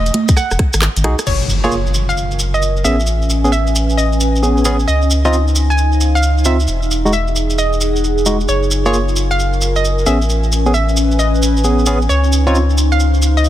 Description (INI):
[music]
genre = UK garage, two-step garage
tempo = 133 BPM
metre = 4/4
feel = swing 65% on 16ths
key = unclear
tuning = A4 = 442 Hz
[part]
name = hollow square pluck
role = melody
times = 0.0-13.5 s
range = Db5 to Ab5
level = -21 LUFS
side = right 1 dB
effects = chorus, dub echo
[part]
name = saturated sub bass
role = bass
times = 0.0-13.5 s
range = E1 to Db2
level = -15 LUFS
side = equal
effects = none
[part]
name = garage drum kit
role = drums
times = 0.1-1.4 s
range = congas, crash cymbal, handclaps, hi-hat, rim click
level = -20 LUFS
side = right 2 dB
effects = small room ambience
[part]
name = maracas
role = percussion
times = 0.1-13.5 s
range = none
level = -23 LUFS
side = right 1 dB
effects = none
[part]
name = electronic kick drum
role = drums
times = 0.3-0.7 s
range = none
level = -12 LUFS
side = equal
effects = small room ambience
[part]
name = barky tine electric piano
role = stabs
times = 1.0-12.6 s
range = G#3 to G#4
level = -20 LUFS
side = right 1 dB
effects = medium tremolo, dub echo
[part]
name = impact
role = sound effects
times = 1.3-3.1 s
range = none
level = -22 LUFS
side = equal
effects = none
[part]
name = warbly tape-like pad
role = texture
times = 1.8-13.5 s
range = C#4 to Ab5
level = -20 LUFS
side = left 1 dB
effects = chorus, built-in reverb, sidechain pumping
[sound]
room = light reverb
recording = dense, heavily limited modern master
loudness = -12 LUFS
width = side -12 dB against mid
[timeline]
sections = 0.0-1.3 A section; 1.3-13.5 B section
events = drum fill 0.4-1.3; impact 1.3-3.1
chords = 0.0 Emaj9; 1.3 Gbmaj9; 2.8 Amaj9; 4.9 Dbmaj9; 6.7 Emaj9; 8.5 Gbmaj9; 10.1 Amaj9; 12.1 Dbmaj9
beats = 0.37 0.82 | 1.27 1.72 2.17 2.62 | 3.07 3.52 3.98 4.43 | 4.88 5.33 5.78 6.23 | 6.68 7.13 7.58 8.04 | 8.49 8.94 9.39 9.84 | 10.29 10.74 11.19 11.64 | 12.10 12.55 13.00 13.45